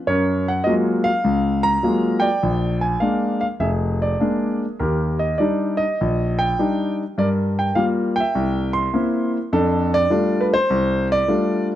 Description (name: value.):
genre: solo jazz.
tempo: 102 BPM.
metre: 4/4.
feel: swing 69% on 8ths, rubato.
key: unclear.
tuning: A4 = 443 Hz.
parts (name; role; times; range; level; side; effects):
clear concert grand piano; solo; 0.1-11.7 s; F1 to C6; -18 LUFS; equal; none.
room: light reverb, studio reverb.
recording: dry, close 1970s-style studio recording.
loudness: -18 LUFS.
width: side -12 dB against mid.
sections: 0.0-11.8 A section.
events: none.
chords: 0.1 Gbmaj9; 2.4 Bb7; 4.8 Ebmaj7; 7.2 Gm7; 8.4 C7; 9.5 F69.